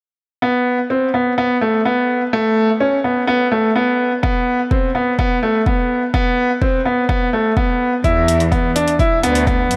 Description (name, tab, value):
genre	piano and strings electronica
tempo	126 BPM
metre	4/4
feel	straight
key	unclear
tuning	A4 = 440 Hz
part	bright grand piano	riff	0.4-9.8 s	A3 to E4	-18 LUFS	equal	digital delay
part	electronic kick drum	drums	4.2-9.6 s	none	-21 LUFS	equal	overdrive
part	clear studio cello section	bass	8.0-9.8 s	D2 to F#2	-22 LUFS	equal	sidechain pumping
part	electronic hi-hat	drums	8.0-9.8 s	none	-28 LUFS	equal	overdrive
room	light reverb, studio reverb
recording	none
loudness	-17 LUFS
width	mono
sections	0.4-8.0 A section; 8.0-9.8 B section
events	none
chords	0.4 N.C.; 8.0 E5